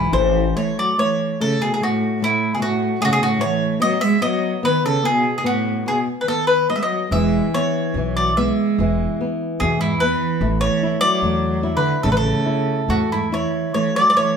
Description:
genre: fado-style ballad.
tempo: 72 BPM.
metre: 2/4.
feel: rubato.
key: A major.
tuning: A4 = 440 Hz.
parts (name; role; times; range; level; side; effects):
bowl-back mandolin; melody; 0.0-14.4 s; E4 to E5; -20 LUFS; equal; none.
rich cello; second line; 0.0-14.4 s; G#2 to G#3; -23 LUFS; right 3 dB; none.
flamenco guitar; accompaniment; 0.0-14.4 s; E3 to C5; -24 LUFS; left 4 dB; none.
upright bass; bass; 0.0-0.5, 7.1-13.4 s; E1 to E2; -24 LUFS; equal; none.
room: wet large studio reverb, RT60 1.0 s.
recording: band playing live in one room.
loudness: -17 LUFS.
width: side -6 dB against mid.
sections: 0.6-13.7 A section.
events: none.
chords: 0.0 Am; 0.6 N.C.; 7.1 E; 10.4 A5; 13.7 N.C..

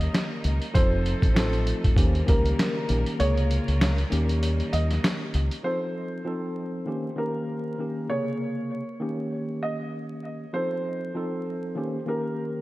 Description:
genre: hip hop, boom-bap hip-hop.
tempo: 98 BPM.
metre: 4/4.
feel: swing 57% on 16ths.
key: unclear.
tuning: A4 = 441 Hz.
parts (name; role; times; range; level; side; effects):
warm upright piano; melody; 0.0-12.6 s; Bb4 to Eb5; -32 LUFS; right 1 dB; high-pass filter, low-pass filter, diffuse ambient delay.
tine electric piano; accompaniment; 0.0-12.6 s; C3 to A4; -30 LUFS; equal; overdrive, fast stereo tremolo, high-pass filter, low-pass filter.
clear studio string section; sustained chords; 0.0-5.6 s; Bb2 to Bb4; -36 LUFS; left 1 dB; high-pass filter, low-pass filter.
deep dub fingered electric bass; bass; 0.0-5.5 s; F1 to Eb2; -24 LUFS; equal; none.
boom bap sampler-style drum kit; drums; 0.0-5.6 s; hi-hat, kick drum, snare drum; -25 LUFS; equal; none.
room: moderate lush hall reverb, RT60 2.1 s.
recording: dreamy mix soaked in reverb, vinyl crackle.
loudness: -24 LUFS.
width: side -18 dB against mid.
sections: 0.0-5.6 A section; 5.6-12.6 B section.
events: kick muted 3.2-5.6.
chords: 0.0 Eb7; 0.7 F7; 2.0 Eb7; 3.2 Bbm7/Db; 4.1 Eb7; 5.6 F7; 6.9 Eb7; 8.1 Bbm7; 9.0 Eb7; 10.5 F7; 11.8 Eb7.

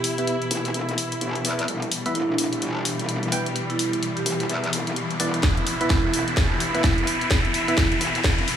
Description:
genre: bass house.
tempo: 128 BPM.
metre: 4/4.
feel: swing 60% on 16ths.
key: E minor.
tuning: A4 = 441 Hz.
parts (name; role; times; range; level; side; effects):
marimba with medium mallets; melody; 0.0-7.9 s; D4 to G4; -29 LUFS; right 3 dB; digital delay.
rich studio string section; sustained chords; 0.0-8.6 s; B2 to E4; -28 LUFS; left 2 dB; sidechain pumping.
garage drum kit; drums; 0.0-8.6 s; hi-hat, snare drum; -27 LUFS; left 1 dB; studio reverb.
riser; sound effects; 0.5-8.6 s; none; -30 LUFS; right 1 dB; none.
deep dark ambient pad; texture; 0.0-8.6 s; E4 to E5; -40 LUFS; right 3 dB; none.
percussive organ stab; stabs; 0.2-7.8 s; B3 to G5; -30 LUFS; right 1 dB; chorus, sidechain pumping, digital delay.
metallic wobble bass; bass; 0.5-8.5 s; E1 to E2; -30 LUFS; equal; chorus, tube saturation, sidechain pumping, high-pass filter.
electronic kick drum; drums; 5.4-8.4 s; none; -22 LUFS; equal; studio reverb.
room: light reverb, digital ambience.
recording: small room reverb.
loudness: -21 LUFS.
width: side -9 dB against mid.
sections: 0.0-8.6 A section.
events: build-up 0.0-8.6; filter sweep on synth stab 0.0-8.6; riser 0.5-8.6; drum fill 5.4-8.6.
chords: 0.0 E5.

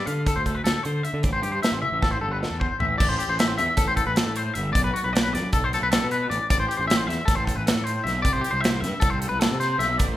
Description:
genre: math rock and midwest emo.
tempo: 308 BPM (eighths).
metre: 9/8.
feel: straight.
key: A minor.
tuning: A4 = 441 Hz.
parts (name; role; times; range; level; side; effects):
twangy electric guitar; arpeggios; 0.0-10.2 s; F#4 to F5; -25 LUFS; left 2 dB; harmonic tremolo.
fuzz picked electric bass; bass; 0.1-10.2 s; G1 to D3; -28 LUFS; equal; overdrive.
modern studio drum kit; drums; 0.1-10.1 s; crash cymbal, hi-hat, kick drum, snare drum, toms; -24 LUFS; right 1 dB; none.
room: light reverb.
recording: none.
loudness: -21 LUFS.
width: side -13 dB against mid.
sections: 0.0-3.0 A section; 3.0-10.2 B section.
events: drum fill 1.8-3.0.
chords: 0.0 Dm7; 1.2 Am7; 4.7 Bm7; 6.5 Amadd9; 8.2 C6.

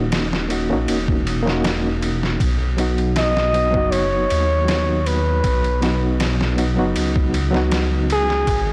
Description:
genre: trip hop.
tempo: 79 BPM.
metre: 4/4.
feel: straight.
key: unclear.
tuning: A4 = 440 Hz.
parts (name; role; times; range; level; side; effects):
bright reed electric piano; accompaniment; 0.0-8.5 s; F#3 to F#4; -25 LUFS; equal; fast tremolo, vintage 12-bit sampler grit.
dark detuned saw bass; bass; 0.0-8.7 s; D#1 to D#2; -24 LUFS; equal; none.
trip hop sampler-style drum kit; drums; 0.1-8.7 s; kick drum, ride cymbal, snare drum; -26 LUFS; equal; overdrive, small room ambience.
trumpet with bucket mute; melody; 3.2-8.7 s; G#4 to D#5; -23 LUFS; equal; tape echo.
room: light reverb.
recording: blown-out, overdriven recording, vinyl crackle, overdrive.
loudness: -19 LUFS.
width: mono.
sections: 0.0-8.7 A section.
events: none.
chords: 0.0 D#m7; 2.4 B.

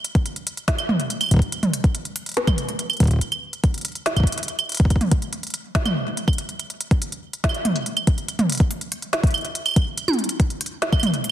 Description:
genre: IDM.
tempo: 142 BPM.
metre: 4/4.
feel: straight.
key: none.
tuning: none.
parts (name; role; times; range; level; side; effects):
organic electronic drum kit; drums; 0.0-11.3 s; claves, hi-hat, snare drum, toms; -23 LUFS; right 1 dB; overdrive, digital delay.
electronic kick drum; drums; 0.2-11.0 s; none; -19 LUFS; equal; overdrive.
room: light reverb.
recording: dense, heavily limited modern master.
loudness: -20 LUFS.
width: side -12 dB against mid.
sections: 0.0-11.3 A section.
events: none.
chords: none.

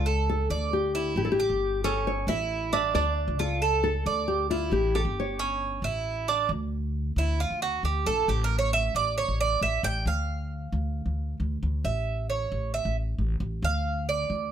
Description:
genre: latin, Cuban son and guajira.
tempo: 135 BPM.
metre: 4/4.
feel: straight.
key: D harmonic minor.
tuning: A4 = 439 Hz.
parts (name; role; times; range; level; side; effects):
nylon-string guitar; melody; 0.0-5.8 s; F4 to E5; -28 LUFS; left 3 dB; none.
Cuban tres; arpeggios; 0.0-14.5 s; C#4 to G5; -28 LUFS; right 5 dB; none.
upright bass; bass; 0.0-14.5 s; G1 to D2; -29 LUFS; equal; none.
room: light reverb.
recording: none.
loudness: -25 LUFS.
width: side -9 dB against mid.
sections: 0.0-6.5 A section; 6.5-14.5 B section.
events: Cuban tres solo 6.5-14.5.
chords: 0.0 D5; 1.2 A7; 2.9 Dm; 4.7 A7; 6.5 Bbmaj7 (rootless); 8.3 A7; 10.1 Dm; 11.8 A; 13.6 Dm.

